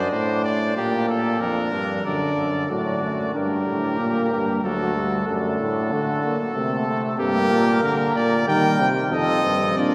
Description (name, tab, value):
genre	classical, imitative canzona for brass ensemble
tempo	93 BPM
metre	4/4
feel	straight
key	unclear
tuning	A4 = 438 Hz
part	bright trumpet	melody	0.0-9.9 s	G4 to G5	-27 LUFS	equal	none
part	warm trumpet	second line	0.0-9.9 s	Bb3 to Bb4	-31 LUFS	equal	none
part	clear euphonium	bass	0.0-9.9 s	D2 to Eb3	-27 LUFS	equal	none
part	clear trombone	accompaniment	2.1-9.9 s	D3 to D4	-27 LUFS	equal	none
room	wet cathedral reverb, RT60 4.2 s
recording	none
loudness	-22 LUFS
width	mono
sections	0.0-2.1 A section; 2.1-9.9 B section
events	none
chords	0.0 D/F#; 0.8 Gm/Bb; 2.1 D/F#; 3.4 Gm; 4.6 D; 7.2 Gm; 8.5 Cm/Eb; 9.1 F